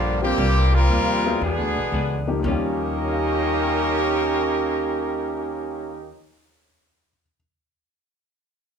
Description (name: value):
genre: jazz, big band swing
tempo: 116 BPM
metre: 4/4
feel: swing 67% on 8ths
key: Eb mixolydian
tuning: A4 = 439 Hz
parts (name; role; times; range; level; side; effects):
- clear trumpet section; melody; 0.0-6.1 s; G3 to Eb5; -24 LUFS; equal; none
- clear trombone section; second line; 0.0-6.1 s; G2 to G4; -26 LUFS; right 2 dB; none
- archtop guitar, miked and amplified; accompaniment; 0.0-6.2 s; G2 to G#4; -31 LUFS; left 4 dB; none
- upright bass; bass; 0.0-6.1 s; Bb1 to E2; -24 LUFS; equal; none
- warm grand piano; accompaniment; 0.2-7.3 s; Eb2 to Db7; -30 LUFS; left 4 dB; none
room: moderate large studio reverb, RT60 0.8 s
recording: band playing live in one room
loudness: -20 LUFS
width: side -7 dB against mid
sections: 0.0-2.4 A section; 2.4-6.6 B section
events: none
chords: 0.4 C7sus4; 1.4 E7; 2.4 Eb9